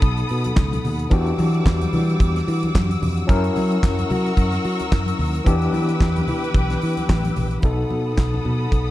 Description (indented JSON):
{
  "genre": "disco",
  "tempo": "110 BPM",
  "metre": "4/4",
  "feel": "swing 56% on 16ths",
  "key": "E dorian",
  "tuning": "A4 = 437 Hz",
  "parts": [
    { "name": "overdriven tine electric piano", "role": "accompaniment", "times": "0.0-8.9 s", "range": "B2 to A#4", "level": "-24 LUFS", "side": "left 2 dB", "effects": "fast tremolo" },
    { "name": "clear studio string section", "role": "sustained chords", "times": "0.0-8.9 s", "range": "G3 to E6", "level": "-28 LUFS", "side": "left 1 dB", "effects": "none" },
    { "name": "fingered electric bass", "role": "bass", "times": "0.0-8.9 s", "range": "A1 to F#3", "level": "-23 LUFS", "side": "equal", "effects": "none" },
    { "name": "damped 70s drum kit", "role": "drums", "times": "0.0-8.9 s", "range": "handclaps, hi-hat, kick drum, snare drum", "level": "-20 LUFS", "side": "equal", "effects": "none" },
    { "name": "congas", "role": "percussion", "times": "0.0-8.9 s", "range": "none", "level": "-30 LUFS", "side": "left 2 dB", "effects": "none" }
  ],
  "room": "light reverb, small room reverb",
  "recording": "dark, warm production",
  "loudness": "-18 LUFS",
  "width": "side -15 dB against mid",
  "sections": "0.0-7.6 A section; 7.6-8.9 B section",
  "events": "none",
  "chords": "0.0 B7; 1.1 Em9; 3.3 F#7; 5.5 Em7; 7.6 B7",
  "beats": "0.03 0.57 | 1.11 1.66 2.20 2.74 | 3.29 3.83 4.37 4.92 | 5.46 6.00 6.55 7.09 | 7.63 8.18 8.72"
}